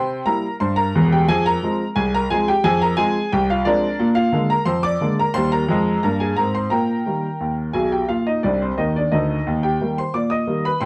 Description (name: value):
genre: ragtime piano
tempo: 88 BPM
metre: 2/4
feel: straight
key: Eb major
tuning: A4 = 440 Hz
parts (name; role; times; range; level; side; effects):
- clear grand piano; solo; 0.0-10.9 s; E1 to Eb6; -20 LUFS; equal; none
room: moderate studio reverb, RT60 0.5 s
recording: heard from further back in the room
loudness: -20 LUFS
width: mono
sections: 0.0-10.9 A section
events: grand piano fill 8.4-9.5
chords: 0.0 C7; 1.3 Fm; 4.0 Bb7; 5.4 Eb; 6.7 Eb/Bb; 8.1 Bb; 9.5 Eb